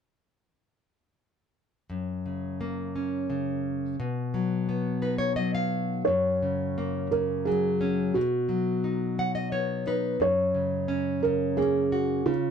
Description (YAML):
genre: children's music, lullaby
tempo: 87 BPM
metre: 3/4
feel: rubato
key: F# major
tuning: A4 = 440 Hz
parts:
  - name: nylon-string guitar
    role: accompaniment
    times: 1.9-12.5 s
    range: F#2 to F#5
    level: -27 LUFS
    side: left 2 dB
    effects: none
  - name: felt-muted upright piano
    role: melody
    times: 6.0-12.5 s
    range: E#4 to C#5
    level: -26 LUFS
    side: right 2 dB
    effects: none
room: light reverb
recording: dark, warm production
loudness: -25 LUFS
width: side -7 dB against mid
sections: 1.9-6.1 A section; 6.1-12.5 B section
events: nylon-string guitar fill 4.7-6.1, 8.8-10.2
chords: 1.9 F#; 4.0 B; 6.1 F#add9; 8.1 B; 10.2 F#add9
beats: | 1.90 2.61 3.31 | 3.99 4.67 5.36 | 6.06 6.76 7.45 | 8.15 8.83 9.52 | 10.20 10.88 11.57 | 12.26